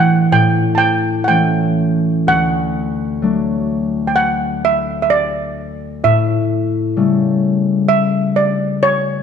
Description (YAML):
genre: celtic folk, Celtic slow air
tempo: 64 BPM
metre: 4/4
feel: rubato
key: D major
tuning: A4 = 443 Hz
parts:
  - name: steel pan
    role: melody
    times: 0.0-9.2 s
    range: C#5 to A5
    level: -16 LUFS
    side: right 3 dB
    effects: none
  - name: concert harp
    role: accompaniment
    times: 0.0-9.2 s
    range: D2 to D4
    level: -16 LUFS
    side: left 2 dB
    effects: none
room: moderate concert hall reverb, RT60 1.9 s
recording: dark, warm production, nothing above 10.4 kHz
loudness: -13 LUFS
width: side -7 dB against mid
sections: 0.0-9.2 A section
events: none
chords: 0.3 A; 2.3 D; 6.0 A7